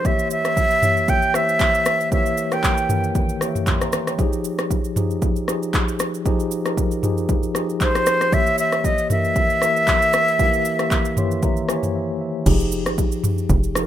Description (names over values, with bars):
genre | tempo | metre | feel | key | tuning
amapiano | 116 BPM | 4/4 | swing 55% on 16ths | unclear | A4 = 438 Hz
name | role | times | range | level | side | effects
breathy silver concert flute | melody | 0.0-3.0, 7.8-11.9 s | C5 to G5 | -19 LUFS | right 1 dB | tape echo
mellow tine electric piano | accompaniment | 0.0-13.9 s | Eb3 to C6 | -24 LUFS | left 2 dB | medium stereo tremolo
deep house drum kit | drums | 0.0-13.9 s | crash cymbal, handclaps, kick drum, rim click, shaker, toms | -21 LUFS | equal | none
tight log drum bass | bass | 12.5-13.9 s | F1 to Ab1 | -21 LUFS | equal | none
room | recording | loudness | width
little or no reverb | rough home demo mix | -17 LUFS | side -11 dB against mid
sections
0.0-12.5 A section; 12.5-13.9 B section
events
tine electric piano fill 10.9-12.5; break 11.9-12.5; drop 12.5-13.9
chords
0.0 C7b9/E; 4.2 Fm9; 8.3 C7b9/E; 12.5 Fm9